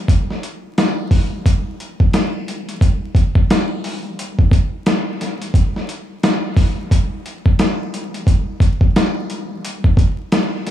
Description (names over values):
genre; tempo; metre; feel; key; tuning
hip hop; 88 BPM; 4/4; swing 61% on 16ths; none; none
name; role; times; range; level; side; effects
dusty soul sampler-style drum kit; drums; 0.1-10.7 s; hi-hat, kick drum, snare drum; -15 LUFS; equal; overdrive
room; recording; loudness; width
moderate plate reverb, RT60 3.3 s; vinyl crackle, studio ambience; -15 LUFS; side -11 dB against mid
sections
0.1-10.7 A section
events
none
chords
none